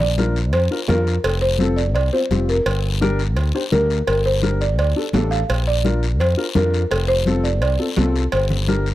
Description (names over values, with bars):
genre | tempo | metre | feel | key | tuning
latin, cumbia | 169 BPM | 4/4 | straight | G minor | A4 = 440 Hz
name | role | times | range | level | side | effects
buzzing marimba with medium mallets | melody | 0.0-8.9 s | A4 to F5 | -22 LUFS | right 1 dB | slapback echo
modern bright fingered electric bass | bass | 0.0-8.9 s | F1 to F2 | -20 LUFS | equal | none
congas | percussion | 0.0-8.9 s | none | -24 LUFS | left 2 dB | none
dark upright piano | accompaniment | 0.2-8.9 s | C4 to C5 | -24 LUFS | left 2 dB | none
guiro | percussion | 0.2-8.9 s | none | -32 LUFS | left 8 dB | none
cowbell and timbales | percussion | 0.5-8.5 s | none | -27 LUFS | right 4 dB | none
room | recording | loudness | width
small room ambience | dry, close 1970s-style studio recording | -16 LUFS | side -15 dB against mid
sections
0.0-8.9 A section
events
none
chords
0.0 Bb; 1.2 F; 2.7 Gm; 5.5 Bb; 6.9 F; 8.3 Gm